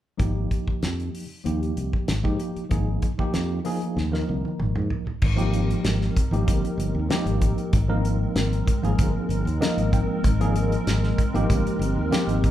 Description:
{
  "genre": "electric jazz fusion",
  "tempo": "96 BPM",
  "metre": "4/4",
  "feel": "straight",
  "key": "Ab major",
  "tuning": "A4 = 440 Hz",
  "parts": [
    { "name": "tine electric piano", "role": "accompaniment", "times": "0.2-12.5 s", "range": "F3 to G5", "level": "-27 LUFS", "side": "equal", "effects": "overdrive, fast stereo tremolo" },
    { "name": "fretless electric bass", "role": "bass", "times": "0.2-12.5 s", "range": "G1 to Ab2", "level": "-25 LUFS", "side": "equal", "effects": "none" },
    { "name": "damped 70s drum kit", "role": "drums", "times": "0.2-12.5 s", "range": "crash cymbal, hi-hat, kick drum, snare drum, toms", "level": "-25 LUFS", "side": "equal", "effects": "none" },
    { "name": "hollow soft pad", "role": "sustained chords", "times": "5.2-12.5 s", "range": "Ab3 to Bb4", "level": "-31 LUFS", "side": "right 1 dB", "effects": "ensemble chorus" }
  ],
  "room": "light reverb",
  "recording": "band playing live in one room",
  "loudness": "-21 LUFS",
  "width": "side -12 dB against mid",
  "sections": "0.2-5.2 A section; 5.2-12.5 B section",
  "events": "drum fill 4.0-5.2; tine electric piano fill 9.3-10.2",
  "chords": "0.2 Absus2; 5.2 Abmaj9",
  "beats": "| 0.20 0.82 1.45 2.08 | 2.71 3.34 3.97 4.59 | 5.22 5.85 6.48 7.11 | 7.73 8.36 8.99 9.62 | 10.24 10.87 11.50 12.13"
}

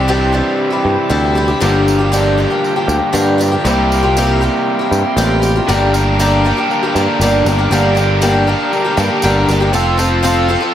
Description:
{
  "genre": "folk rock and heartland rock",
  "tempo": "118 BPM",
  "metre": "4/4",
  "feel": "straight",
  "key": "G dorian",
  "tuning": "A4 = 440 Hz",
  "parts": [
    { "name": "picked twelve-string acoustic guitar", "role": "accompaniment", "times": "0.0-10.7 s", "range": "G2 to A4", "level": "-15 LUFS", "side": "left 2 dB", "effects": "none" },
    { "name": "bright tonewheel organ", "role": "sustained chords", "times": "0.0-10.7 s", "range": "G4 to D6", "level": "-27 LUFS", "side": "right 1 dB", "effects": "slow rotary speaker" },
    { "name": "overdriven electric guitar", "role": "riff", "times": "0.0-10.7 s", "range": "G2 to Bb4", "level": "-17 LUFS", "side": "right 1 dB", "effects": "none" },
    { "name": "picked electric bass", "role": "bass", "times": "0.0-10.6 s", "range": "F1 to G2", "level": "-16 LUFS", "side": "equal", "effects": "none" },
    { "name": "tambourine", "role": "percussion", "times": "1.6-10.4 s", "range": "none", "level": "-28 LUFS", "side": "right 4 dB", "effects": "none" }
  ],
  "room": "light reverb, small room ambience",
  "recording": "none",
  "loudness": "-11 LUFS",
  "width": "side -10 dB against mid",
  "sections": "0.0-5.7 A section; 5.7-10.7 B section",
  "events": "none",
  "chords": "0.0 Cadd9; 1.6 Gm7; 3.7 C7sus4; 5.7 Gm; 9.7 F",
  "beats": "0.09 0.60 1.11 | 1.62 2.13 2.64 3.15 | 3.65 4.16 4.67 5.18 | 5.69 6.19 6.70 7.21 | 7.71 8.22 8.73 9.23 | 9.74 10.24"
}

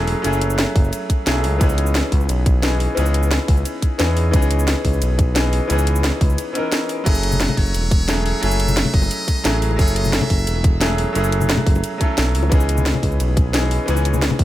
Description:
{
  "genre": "liquid drum and bass",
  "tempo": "176 BPM",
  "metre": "4/4",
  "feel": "straight",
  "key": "F# dorian",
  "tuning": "A4 = 443 Hz",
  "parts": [
    { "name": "bright grand piano", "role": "accompaniment", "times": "0.0-14.4 s", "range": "E3 to A#4", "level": "-22 LUFS", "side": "left 1 dB", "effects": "tape echo" },
    { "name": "smooth synth bass", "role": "bass", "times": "0.0-14.4 s", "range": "E1 to E2", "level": "-19 LUFS", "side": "equal", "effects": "none" },
    { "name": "garage drum kit", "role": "drums", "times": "0.1-14.4 s", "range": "cabasa, crash cymbal, hi-hat, ride cymbal, snare drum", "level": "-24 LUFS", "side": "equal", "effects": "none" },
    { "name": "electronic kick drum", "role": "drums", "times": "0.8-14.4 s", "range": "none", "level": "-17 LUFS", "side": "equal", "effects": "none" },
    { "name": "trumpet with metal mute", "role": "melody", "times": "7.1-10.6 s", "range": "C#5 to E5", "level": "-26 LUFS", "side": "equal", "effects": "tape echo" },
    { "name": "congas and bongos", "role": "percussion", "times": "7.3-14.4 s", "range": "none", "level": "-26 LUFS", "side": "left 4 dB", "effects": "dub echo" }
  ],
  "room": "light reverb, small room ambience",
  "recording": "echo-heavy mix",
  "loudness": "-16 LUFS",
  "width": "side -14 dB against mid",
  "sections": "0.0-14.4 A section",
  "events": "break 6.4-7.1",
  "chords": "0.0 F#m9; 1.6 C#m9; 7.1 F#m9; 12.5 C#m9",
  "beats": "| 0.24 0.59 0.93 1.27 | 1.61 1.95 2.29 2.63 | 2.97 3.31 3.65 4.00 | 4.34 4.68 5.02 5.36 | 5.70 6.04 6.38 6.72 | 7.06 7.40 7.75 8.09 | 8.43 8.77 9.11 9.45 | 9.79 10.13 10.47 10.81 | 11.15 11.49 11.84 12.18 | 12.52 12.86 13.20 13.54 | 13.88 14.22"
}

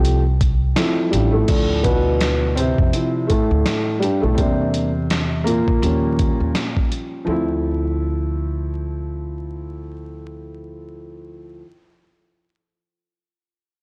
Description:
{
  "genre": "hip hop, jazz-hop",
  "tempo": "83 BPM",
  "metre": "4/4",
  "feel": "swing 59% on 16ths",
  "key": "D minor",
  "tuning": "A4 = 436 Hz",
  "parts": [
    { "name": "dark upright piano", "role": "accompaniment", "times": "0.0-11.6 s", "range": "G2 to G4", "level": "-24 LUFS", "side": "equal", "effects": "none" },
    { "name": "upright bass", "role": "bass", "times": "0.0-11.6 s", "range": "A1 to F2", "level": "-24 LUFS", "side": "equal", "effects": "tube saturation" },
    { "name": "dusty soul sampler-style drum kit", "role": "drums", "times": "0.0-7.1 s", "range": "crash cymbal, hi-hat, kick drum, snare drum", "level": "-24 LUFS", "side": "equal", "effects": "none" }
  ],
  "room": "light reverb",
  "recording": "blown-out, overdriven recording, vinyl crackle, overdrive",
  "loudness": "-20 LUFS",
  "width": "mono",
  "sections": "0.0-1.5 A section; 1.5-7.3 B section; 7.3-10.2 C section",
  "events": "upright piano solo 1.5-7.3",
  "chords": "0.0 Dm7 (rootless); 1.5 Dm7; 4.4 Em7b5; 5.8 Eb9; 7.3 Dm7",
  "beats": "0.04 0.76 | 1.49 2.21 2.93 3.65 | 4.38 5.10 5.82 6.55 | 7.27 7.99 8.72 9.44"
}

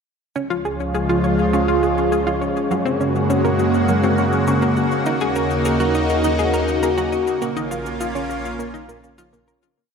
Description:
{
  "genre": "ambient, sequencer-driven space music",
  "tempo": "102 BPM",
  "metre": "4/4",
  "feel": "straight",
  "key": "Bb minor",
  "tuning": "A4 = 444 Hz",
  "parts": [
    { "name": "lush unison pad", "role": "sustained chords", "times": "0.6-9.7 s", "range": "Db3 to Gb4", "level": "-19 LUFS", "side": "equal", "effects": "chorus, phaser" },
    { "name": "analog pluck", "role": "riff", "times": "0.4-9.5 s", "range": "Gb3 to Eb5", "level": "-24 LUFS", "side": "equal", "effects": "chorus, ping-pong delay" },
    { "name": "warm sub bass", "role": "bass", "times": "0.4-9.7 s", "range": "Bb1 to Gb2", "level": "-27 LUFS", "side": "equal", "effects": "tube saturation" },
    { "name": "cabasa and congas", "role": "percussion", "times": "0.4-9.7 s", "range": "none", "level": "-42 LUFS", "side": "left 2 dB", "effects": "ping-pong delay" },
    { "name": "wind-like tuned noise texture", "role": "texture", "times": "0.6-9.8 s", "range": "Db4 to Db5", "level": "-29 LUFS", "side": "equal", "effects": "built-in reverb" }
  ],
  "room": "wet lush hall reverb, RT60 2.7 s",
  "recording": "dreamy mix soaked in reverb",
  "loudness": "-17 LUFS",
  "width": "side -6 dB against mid",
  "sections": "0.4-9.8 A section",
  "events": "fade-in on drum 0.4-9.8; fade-out 6.6-9.8",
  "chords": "0.4 Db; 2.7 Gbadd9; 5.1 Ebm7; 7.4 Bbm",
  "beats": "| 0.36 0.95 1.53 2.12 | 2.71 3.30 3.89 4.48 | 5.06 5.65 6.24 6.83 | 7.42 8.01 8.59 9.18"
}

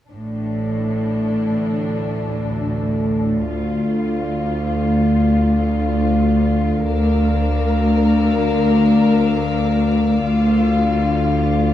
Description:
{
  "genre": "cinematic",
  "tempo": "free time",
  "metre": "none",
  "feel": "none",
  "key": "D minor",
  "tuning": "A4 = 440 Hz",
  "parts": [
    { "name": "warm symphonic violin section", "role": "melody", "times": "0.1-11.7 s", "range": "D4 to Bb4", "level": "-27 LUFS", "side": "left 4 dB", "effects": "none" },
    { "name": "glass harmonica", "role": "sustained chords", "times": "0.1-11.7 s", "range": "A4 to F5", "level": "-26 LUFS", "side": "left 2 dB", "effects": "none" },
    { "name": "clear symphonic cello section", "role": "bass", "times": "0.1-11.7 s", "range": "D2 to A2", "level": "-19 LUFS", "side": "equal", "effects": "none" },
    { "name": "rich symphonic double bass section", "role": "bass", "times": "0.1-11.7 s", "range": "A1 to D2", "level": "-23 LUFS", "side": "right 1 dB", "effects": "none" },
    { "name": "bowed-like drone", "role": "drone", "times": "2.0-11.7 s", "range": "D2", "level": "-23 LUFS", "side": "left 2 dB", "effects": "built-in reverb" },
    { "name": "dark symphonic violin section", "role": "texture", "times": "6.9-11.7 s", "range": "D6 to F6", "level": "-33 LUFS", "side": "left 4 dB", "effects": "none" }
  ],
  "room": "moderate scoring stage reverb, RT60 1.8 s",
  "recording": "small room ambience",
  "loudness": "-16 LUFS",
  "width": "side -11 dB against mid",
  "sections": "0.1-11.7 A section",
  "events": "none",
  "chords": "0.1 Asus4; 3.5 Dm; 6.9 Bb/D; 10.2 Dm",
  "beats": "free time"
}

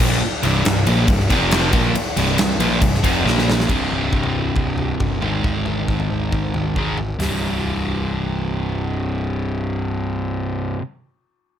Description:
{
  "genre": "quiet-loud alternative rock",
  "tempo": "137 BPM",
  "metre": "4/4",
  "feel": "straight",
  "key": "C minor",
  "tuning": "A4 = 440 Hz",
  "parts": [
    { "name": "sludgy distorted guitar", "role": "riff", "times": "0.0-10.8 s", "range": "C2 to Bb3", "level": "-20 LUFS", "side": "equal", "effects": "overdrive" },
    { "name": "fuzz picked electric bass", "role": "bass", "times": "0.0-10.7 s", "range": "C1 to Bb1", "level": "-24 LUFS", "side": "equal", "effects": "overdrive" },
    { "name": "huge arena drum kit", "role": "drums", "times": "0.0-7.3 s", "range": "crash cymbal, hi-hat, kick drum, ride cymbal, snare drum, toms", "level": "-21 LUFS", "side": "equal", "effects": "none" }
  ],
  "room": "light reverb",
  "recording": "none",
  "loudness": "-17 LUFS",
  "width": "side -9 dB against mid",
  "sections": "0.0-3.7 A section; 3.7-7.2 B section; 7.2-10.7 C section",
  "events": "drum fill 3.3-3.7",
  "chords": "0.0 C5; 1.3 F5; 1.7 C5; 3.3 Bb5; 3.7 C5; 5.2 Ab5; 7.2 C5",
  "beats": "| 0.22 0.65 1.08 1.52 | 1.95 2.39 2.82 3.26 | 3.69 4.13 4.57 5.01 | 5.44 5.88 6.32 6.76 | 7.20 7.64 8.08 8.52 | 8.96 9.40 9.84 10.28"
}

